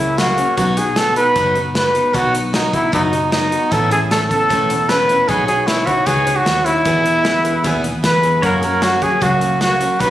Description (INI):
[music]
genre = honky-tonk and classic country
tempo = 153 BPM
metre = 4/4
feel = straight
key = unclear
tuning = A4 = 438 Hz
[part]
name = mellow trumpet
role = melody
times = 0.0-10.1 s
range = D#4 to B4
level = -15 LUFS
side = equal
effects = none
[part]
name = picked steel-string acoustic guitar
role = accompaniment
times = 0.0-10.1 s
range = E2 to C#5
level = -21 LUFS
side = left 2 dB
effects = none
[part]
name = vintage muted fingered electric bass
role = bass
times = 0.0-10.1 s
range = E1 to F#2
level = -24 LUFS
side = equal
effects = none
[part]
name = natural country drum kit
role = drums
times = 0.2-10.1 s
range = hi-hat, kick drum, snare drum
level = -23 LUFS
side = equal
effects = none
[part]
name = dark upright piano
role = second line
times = 7.2-7.9 s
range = B4 to E5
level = -28 LUFS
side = right 5 dB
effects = none
[part]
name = pedal steel guitar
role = sustained chords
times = 8.4-10.0 s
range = C#5 to F#5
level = -24 LUFS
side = right 2 dB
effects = none
[sound]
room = light reverb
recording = recorded on a phone in the room, studio reverb, compression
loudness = -13 LUFS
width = side -13 dB against mid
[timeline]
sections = 0.0-10.1 A section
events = none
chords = 0.0 F#add9; 0.6 B; 3.7 Aadd9; 5.3 Badd9; 6.9 E; 8.4 F#